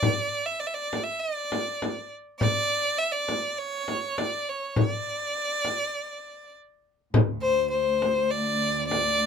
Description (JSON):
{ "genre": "Persian modal ensemble", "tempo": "101 BPM", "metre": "4/4", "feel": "straight", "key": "unclear", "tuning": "A4 = 440 Hz", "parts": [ { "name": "clear violin", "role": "melody", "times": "0.0-9.3 s", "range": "C5 to E5", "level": "-26 LUFS", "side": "left 1 dB", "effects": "none" }, { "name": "frame drum", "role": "percussion", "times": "0.0-9.0 s", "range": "none", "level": "-25 LUFS", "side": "left 2 dB", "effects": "none" }, { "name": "rich symphonic cello section", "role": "drone", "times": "7.1-9.3 s", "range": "D2", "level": "-32 LUFS", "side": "right 2 dB", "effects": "none" } ], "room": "moderate small room ambience, RT60 0.5 s", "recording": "minimal, uncompressed stereo recording", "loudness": "-24 LUFS", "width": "side -7 dB against mid", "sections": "0.0-7.1 A section; 7.1-9.3 B section", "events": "stop 5.9-7.1", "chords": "none" }